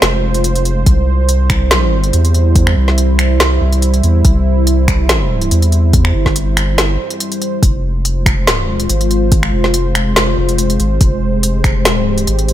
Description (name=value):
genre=deep dubstep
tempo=142 BPM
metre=4/4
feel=swing 53% on 16ths, half-time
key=F harmonic minor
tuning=A4 = 440 Hz
part: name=dark analog pad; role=sustained chords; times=0.0-12.5 s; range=G3 to C5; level=-18 LUFS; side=right 1 dB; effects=chorus
part: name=soft dub sub bass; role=bass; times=0.0-12.5 s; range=F1 to E2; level=-14 LUFS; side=equal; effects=none
part: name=deep house drum kit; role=drums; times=0.0-12.5 s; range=finger snaps, hi-hat, snare drum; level=-16 LUFS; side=equal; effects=none
part: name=electronic kick drum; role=drums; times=0.9-11.7 s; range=none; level=-12 LUFS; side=equal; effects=none
room=little or no reverb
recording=none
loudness=-11 LUFS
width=side -12 dB against mid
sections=0.0-12.5 A section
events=none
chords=0.0 Fm; 0.9 C; 7.6 Fm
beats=0.02 0.44 | 0.87 1.29 1.71 2.13 | 2.56 2.98 3.40 3.82 | 4.25 4.67 5.09 5.51 | 5.94 6.36 6.78 7.20 | 7.63 8.05 8.47 8.89 | 9.32 9.74 10.16 10.58 | 11.01 11.43 11.85 12.27